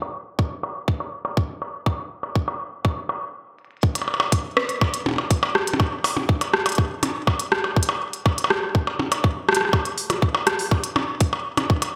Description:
IDM; 122 BPM; 4/4; straight
glitchy drum kit; drums; 0.0-11.9 s; hi-hat, percussion blips, rim click; -25 LUFS; equal; low-pass filter on perc, low-pass filter on hats, low-pass filter on snare, low-pass filter on room, delay
electronic kick drum; drums; 0.4-11.8 s; -24 LUFS; equal
moderate lush hall reverb, RT60 2.1 s; bright 1980s-style digital production; -23 LUFS; mono
0.0-3.8 A section; 3.8-12.0 B section
stop 3.3-3.8; drum fill 3.6

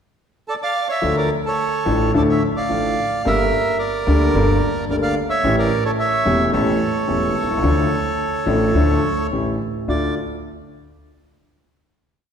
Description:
tango; 109 BPM; 4/4; rubato; D harmonic minor; A4 = 440 Hz
bandoneon; melody; 0.5-10.1 s; A4 to F5; -21 LUFS; right 2 dB
warm grand piano; accompaniment; 1.0-10.1 s; E1 to A4; -20 LUFS; left 2 dB
upright bass; bass; 1.0-10.1 s; E1 to D2; -24 LUFS; right 1 dB
wet scoring stage reverb, RT60 1.6 s; recorded in a church or concert hall; -16 LUFS; side -7 dB against mid
0.0-1.0 pickup bar; 1.0-9.9 A section; 9.9-12.1 final chord
0.0 D5; 1.0 Dm; 3.3 Gmadd9; 5.4 A7; 7.6 Dm; 9.3 A7; 9.9 Dm

